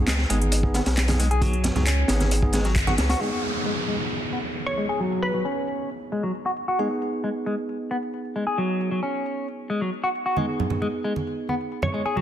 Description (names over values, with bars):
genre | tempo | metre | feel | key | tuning
breakbeat, breaks | 134 BPM | 4/4 | straight | G# minor | A4 = 439 Hz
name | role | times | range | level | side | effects
bell-like tine electric piano | stabs | 0.0-12.2 s | B3 to G#4 | -30 LUFS | right 1 dB | vintage 12-bit sampler grit, ping-pong delay
saturated sub bass | bass | 0.0-3.2 s | G#1 to C#2 | -23 LUFS | equal | none
clean electric guitar | riff | 0.1-12.2 s | F#3 to G#4 | -27 LUFS | left 1 dB | low-pass filter, ping-pong delay
crunchy breakbeat drum kit | drums | 0.1-3.2 s | hi-hat, kick drum, snare drum | -25 LUFS | equal | none
house drum kit | drums | 0.1-12.2 s | handclaps, hi-hat | -30 LUFS | equal | overdrive, low-pass filter on hats, low-pass filter on snare, low-pass filter on room
congas | percussion | 0.1-3.2, 10.4-12.2 s | none | -31 LUFS | right 3 dB | none
downlifter | sound effects | 3.2-6.8 s | none | -31 LUFS | equal | none
glassy wavetable pluck | melody | 4.7-5.7, 11.8-12.0 s | B4 to C#5 | -28 LUFS | equal | chorus, old record sound, vintage 12-bit sampler grit, ping-pong delay
room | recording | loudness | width
light reverb, small room ambience | dense, heavily limited modern master | -22 LUFS | side -10 dB against mid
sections
0.0-3.2 A section; 3.2-12.2 B section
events
filter sweep on tine electric piano 0.0-3.2; band accent 2.8; filter sweep on clean electric guitar 3.2-12.2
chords
0.0 G#m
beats
0.08 0.52 0.97 | 1.42 1.87 2.31 2.76 | 3.21 3.66 4.11 4.55 | 5.00 5.45 5.90 6.34 | 6.79 7.24 7.69 8.13 | 8.58 9.03 9.48 9.93 | 10.37 10.82 11.27 11.72 | 12.16